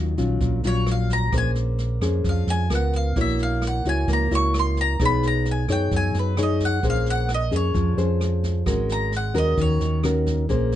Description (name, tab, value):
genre	bossa nova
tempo	131 BPM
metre	4/4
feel	straight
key	Bb minor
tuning	A4 = 443 Hz
part	nylon-string guitar	accompaniment	0.0-10.8 s	Bb2 to Db5	-25 LUFS	left 2 dB	none
part	hollow-body short-scale fingered electric bass	bass	0.0-10.8 s	Ab1 to F#2	-23 LUFS	right 1 dB	none
part	jazz brush drum kit	drums	0.2-10.8 s	kick drum, rim click, snare drum	-30 LUFS	right 1 dB	none
part	bowl-back mandolin	melody	0.7-10.0 s	B4 to Db6	-26 LUFS	left 1 dB	none
room	light reverb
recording	dark, warm production, nothing above 10.3 kHz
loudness	-20 LUFS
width	side -12 dB against mid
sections	0.0-10.8 A section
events	mandolin solo 0.0-10.8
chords	0.0 Ebm9; 1.3 Bbm9; 2.7 Db6; 3.2 Gb7/Bb; 5.0 B69; 6.8 Bbm9; 8.7 Ab9sus4